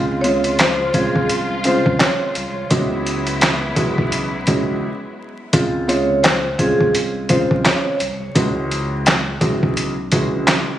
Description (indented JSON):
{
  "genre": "hip hop, boom-bap hip-hop",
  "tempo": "85 BPM",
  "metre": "4/4",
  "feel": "swing 60% on 16ths",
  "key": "Db major",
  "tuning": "A4 = 441 Hz",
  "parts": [
    { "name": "dark concert grand piano", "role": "accompaniment", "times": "0.0-10.8 s", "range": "C#2 to F#4", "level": "-21 LUFS", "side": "equal", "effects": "cassette tape, high-pass filter, low-pass filter" },
    { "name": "warm symphonic string section", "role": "sustained chords", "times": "0.0-5.5 s", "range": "F3 to F4", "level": "-26 LUFS", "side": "left 1 dB", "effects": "high-pass filter, low-pass filter" },
    { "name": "soft dub sub bass", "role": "bass", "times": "0.0-10.6 s", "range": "Bb1 to Db2", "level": "-28 LUFS", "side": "right 1 dB", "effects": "none" },
    { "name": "vibraphone with medium mallets", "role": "melody", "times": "0.2-8.0 s", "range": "Ab4 to Db5", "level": "-21 LUFS", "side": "equal", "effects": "high-pass filter, low-pass filter, tape echo" },
    { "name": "boom bap sampler-style drum kit", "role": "drums", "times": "0.2-10.7 s", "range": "handclaps, hi-hat, kick drum, snare drum", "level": "-18 LUFS", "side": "equal", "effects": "none" }
  ],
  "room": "light reverb, small room ambience",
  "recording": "recorded on a phone in the room, studio reverb, vinyl crackle",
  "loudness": "-15 LUFS",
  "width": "side -12 dB against mid",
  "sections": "0.0-5.5 A section; 5.5-10.8 B section",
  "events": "break 4.8-5.5",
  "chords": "0.0 Dbmaj7; 2.7 E69; 5.5 Dbmaj7; 8.4 E69"
}